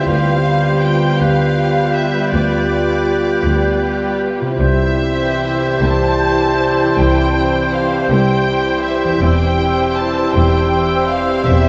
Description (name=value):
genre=classical, slow romantic movement for symphony orchestra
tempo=53 BPM (dotted quarters)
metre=12/8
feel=rubato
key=C major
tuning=A4 = 440 Hz
part: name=rich chamber violin section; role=melody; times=0.0-11.7 s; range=D5 to A5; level=-24 LUFS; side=equal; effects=none
part: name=mellow clarinet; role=second line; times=0.0-11.7 s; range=E4 to F4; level=-27 LUFS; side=equal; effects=none
part: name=mellow flute section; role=second line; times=0.0-11.7 s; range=E6 to G6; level=-28 LUFS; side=equal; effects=none
part: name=rich chamber violin section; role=second line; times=0.0-11.7 s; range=G4 to C5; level=-28 LUFS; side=equal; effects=none
part: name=warm oboe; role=second line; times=0.0-11.7 s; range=B4 to C5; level=-27 LUFS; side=equal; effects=none
part: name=mellow bassoon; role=accompaniment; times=0.0-11.7 s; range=G3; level=-28 LUFS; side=equal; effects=none
part: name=rich symphonic viola section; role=accompaniment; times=0.0-11.7 s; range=E3 to F4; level=-27 LUFS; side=equal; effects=none
part: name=mellow French horn section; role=sustained chords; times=0.0-11.7 s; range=B3 to G4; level=-22 LUFS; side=equal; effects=none
part: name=concert harp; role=arpeggios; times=0.0-11.7 s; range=E2 to G4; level=-24 LUFS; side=equal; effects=none
part: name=clear chamber cello section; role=bass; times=0.1-11.7 s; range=C2 to E2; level=-25 LUFS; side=equal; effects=none
part: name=rich chamber double bass section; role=bass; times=0.1-11.7 s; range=E1 to D2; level=-24 LUFS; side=equal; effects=none
room=wet cathedral reverb, RT60 6.5 s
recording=in a vast, echoing space, nothing above 8.0 kHz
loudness=-15 LUFS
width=mono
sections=0.0-11.7 A section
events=none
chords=0.1 G7/D; 4.6 C; 9.2 C/E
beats=| 0.06 1.21 2.34 3.46 | 4.59 5.83 6.99 8.11 | 9.22 10.35 11.48